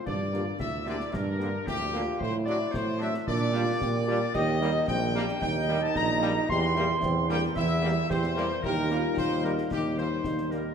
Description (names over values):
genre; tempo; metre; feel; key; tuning
military-style march for wind band; 112 BPM; 2/4; straight; unclear; A4 = 441 Hz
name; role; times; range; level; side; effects
mellow trumpet section; melody; 0.0-10.7 s; G4 to C6; -33 LUFS; left 2 dB; none
warm euphonium; second line; 0.0-10.7 s; C4 to G4; -32 LUFS; right 2 dB; none
warm woodwind section; second line; 0.0-10.7 s; G4 to C6; -34 LUFS; left 1 dB; none
mellow tuba; bass; 0.1-10.7 s; Bb1 to Bb2; -29 LUFS; right 2 dB; none
clash cymbals, concert bass drum and concert snare drum; drums; 0.1-10.6 s; none; -38 LUFS; left 2 dB; none
mellow French horn section; accompaniment; 0.3-10.7 s; G3 to G4; -37 LUFS; left 6 dB; none
bright trombone section; sustained chords; 0.3-10.6 s; D3 to D4; -38 LUFS; equal; none
room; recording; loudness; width
wet scoring stage reverb, RT60 1.8 s; none; -25 LUFS; side -7 dB against mid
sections
0.0-10.7 A section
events
none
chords
0.1 Gm; 2.2 D/A; 3.3 Gm/Bb; 4.4 Eb; 6.5 C7/E; 8.6 Eb